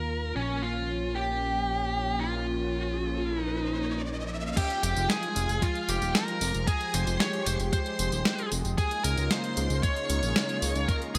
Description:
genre	synthwave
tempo	114 BPM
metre	4/4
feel	straight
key	F minor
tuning	A4 = 440 Hz
part	high-gain lead guitar	melody	0.0-11.2 s	Db4 to Db5	-33 LUFS	equal	distortion, digital delay
part	lush unison pad	sustained chords	0.0-11.2 s	Db3 to G4	-37 LUFS	equal	chorus, sidechain pumping
part	fat analog bass	bass	0.0-11.2 s	Eb1 to Eb2	-34 LUFS	equal	sidechain pumping
part	riser	sound effects	2.2-4.6 s	none	-43 LUFS	equal	none
part	string machine, violins	second line	4.6-11.2 s	F5 to Db6	-42 LUFS	equal	ensemble chorus, digital delay
part	detuned 8-bit digital drum machine	drums	4.6-11.2 s	crash cymbal, hi-hat, snare drum, tambourine	-33 LUFS	equal	gated reverb
part	electronic kick drum	drums	4.6-11.0 s	none	-30 LUFS	equal	none
room	moderate plate reverb, RT60 1.9 s, digital ambience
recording	bright 1980s-style digital production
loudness	-29 LUFS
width	mono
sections	0.0-4.6 A section; 4.6-11.2 B section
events	riser 2.2-4.6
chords	0.4 Bbm; 4.6 Fmadd9; 8.8 Db6

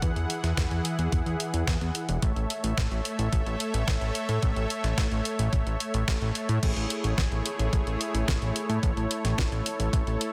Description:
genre	synthwave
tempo	109 BPM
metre	4/4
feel	straight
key	A major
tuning	A4 = 440 Hz
part	soft supersaw	sustained chords	0.0-10.3 s	E3 to F#5	-34 LUFS	equal	sidechain pumping
part	fat analog bass	bass	0.0-10.2 s	E1 to A2	-30 LUFS	equal	none
part	clean 12-bit digital drum machine	drums	0.0-10.3 s	crash cymbal, hi-hat, snare drum	-36 LUFS	equal	high-pass filter on hats, studio reverb, high-pass filter on snare, high-pass filter on toms, high-pass filter on cymbals
part	electronic kick drum	drums	0.0-10.0 s	none	-31 LUFS	equal	studio reverb
room	light reverb, digital ambience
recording	dense, heavily limited modern master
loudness	-28 LUFS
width	mono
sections	0.0-6.6 A section; 6.6-10.3 B section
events	none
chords	0.0 Eadd9; 2.2 A; 6.6 Amaj7

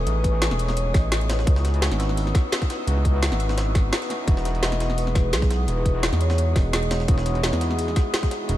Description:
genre	liquid drum and bass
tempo	171 BPM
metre	4/4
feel	straight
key	E major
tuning	A4 = 440 Hz
part	vibraphone with soft mallets	melody	0.0-2.0, 4.6-7.6 s	G#4 to D#5	-33 LUFS	equal	tape echo
part	overdriven tine electric piano	accompaniment	0.0-8.6 s	D#3 to G#5	-31 LUFS	left 1 dB	fast tremolo, tape echo
part	glassy FM pad	sustained chords	0.0-8.6 s	G#4 to E6	-32 LUFS	left 2 dB	ensemble chorus, built-in reverb
part	smooth synth bass	bass	0.0-8.6 s	E1 to E2	-23 LUFS	equal	none
part	garage drum kit	drums	0.1-8.6 s	hi-hat, snare drum	-28 LUFS	equal	none
part	jungle sampler-style drum kit	drums	0.1-8.6 s	hi-hat, snare drum	-35 LUFS	equal	high-pass filter on hats, high-pass filter on snare
part	electronic kick drum	drums	0.2-8.3 s	none	-20 LUFS	equal	none
room	light reverb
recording	none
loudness	-20 LUFS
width	side -14 dB against mid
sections	0.0-8.6 A section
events	none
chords	0.0 Amaj9#11; 1.5 C#m11; 4.3 Emaj9

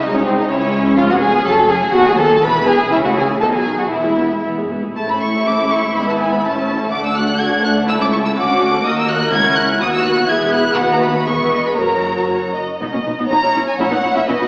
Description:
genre	quick classical-period movement for string orchestra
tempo	115-128 BPM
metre	2/4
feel	rubato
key	E major, A major from 5.0 s, B major from 8.9 s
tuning	A4 = 437 Hz
part	warm symphonic violin section	melody	0.0-14.5 s	B#4 to G#6	-19 LUFS	equal	none
part	dark studio violin section	second line	0.0-14.5 s	G#3 to A5	-17 LUFS	equal	none
part	warm chamber viola section	accompaniment	0.0-14.4 s	D#3 to A#4	-19 LUFS	equal	none
part	warm chamber cello section	bass	0.0-14.5 s	B#1 to C#3	-24 LUFS	equal	none
part	warm chamber double bass section	bass	0.0-14.3 s	E1 to D#2	-28 LUFS	equal	none
room	wet scoring stage reverb, RT60 1.8 s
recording	heard from further back in the room, AM radio sound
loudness	-13 LUFS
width	side -35 dB against mid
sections	0.0-5.0 A section; 5.0-12.8 B section; 12.8-14.5 C section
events	none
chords	0.0 G#/B#; 0.5 C#m; 1.0 C#7/E#; 1.4 F#m; 1.9 B7/D#; 2.4 E; 2.9 A/C#; 3.4 B; 3.9 E; 5.0 A; 6.0 E/G#; 6.4 A; 6.9 D; 7.9 A/C#; 8.4 Dmaj7; 8.9 D#m; 9.3 F#7/C#; 9.8 B/D#; 10.3 E; 10.8 B/D#; 11.3 E; 11.8 F#; 12.8 B; 13.3 C#m7/B; 13.8 F#7/A#

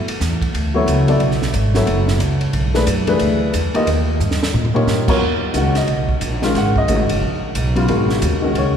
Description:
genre	modal jazz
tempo	180 BPM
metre	4/4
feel	swing 63% on 8ths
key	G# dorian from 5.2 s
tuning	A4 = 439 Hz
part	dark baby grand piano	accompaniment	0.0-8.8 s	C#3 to F#5	-18 LUFS	left 2 dB	none
part	upright bass	bass	0.0-8.8 s	F#1 to A#2	-18 LUFS	equal	none
part	compact cocktail drum kit	drums	0.1-8.7 s	crash cymbal, hi-hat, kick drum, ride cymbal, snare drum, toms	-23 LUFS	right 1 dB	none
room	wet church reverb, RT60 3.4 s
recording	recorded in a church or concert hall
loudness	-15 LUFS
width	side -8 dB against mid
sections	0.0-5.2 A section; 5.2-8.8 B section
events	drum fill 4.2-4.9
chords	0.0 Bm11; 3.9 D#7; 5.2 G#m9; 7.9 G#m7

